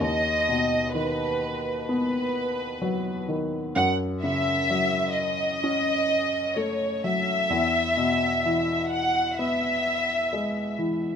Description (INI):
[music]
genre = pop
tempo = 64 BPM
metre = 4/4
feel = straight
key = F# dorian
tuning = A4 = 442 Hz
[part]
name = rich studio violin section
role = melody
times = 0.0-10.8 s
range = B4 to F#5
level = -25 LUFS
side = equal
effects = none
[part]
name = warm upright piano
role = accompaniment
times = 0.0-11.2 s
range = D#2 to C#4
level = -27 LUFS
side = left 1 dB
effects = none
[sound]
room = light reverb, studio ambience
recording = rough home demo mix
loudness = -23 LUFS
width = side -7 dB against mid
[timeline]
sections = 0.0-11.2 A section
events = none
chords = 0.0 B/D#; 3.8 F#m; 7.5 E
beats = | 0.01 0.95 1.89 2.82 | 3.76 4.70 5.64 6.57 | 7.51 8.45 9.39 10.32